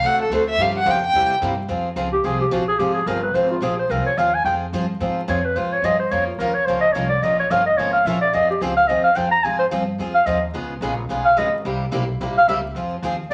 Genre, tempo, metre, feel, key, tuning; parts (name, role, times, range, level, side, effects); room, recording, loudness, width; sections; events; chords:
acoustic string swing (jazz manouche); 217 BPM; 4/4; swing 58% on 8ths; F minor; A4 = 440 Hz
warm violin; melody; 0.0-1.3 s; A4 to G5; -21 LUFS; equal
picked steel-string acoustic guitar; accompaniment; 0.0-13.3 s; C3 to Bb4; -31 LUFS; equal
picked swing-style acoustic guitar; accompaniment; 0.0-13.3 s; C3 to Bb4; -28 LUFS; equal
upright bass; bass; 0.0-13.3 s; G1 to Ab2; -31 LUFS; equal
mellow clarinet; second line; 2.1-13.3 s; F4 to Bb5; -20 LUFS; equal
wet studio reverb, RT60 0.8 s; vinyl crackle; -20 LUFS; mono
0.0-1.7 A section; 1.7-13.3 A section
violin solo 0.0-1.7; clarinet solo 1.7-13.3
0.0 D7; 0.6 Gm7b5; 1.1 C7; 1.7 Fm; 10.5 Db7; 11.6 C7b9; 12.8 Fm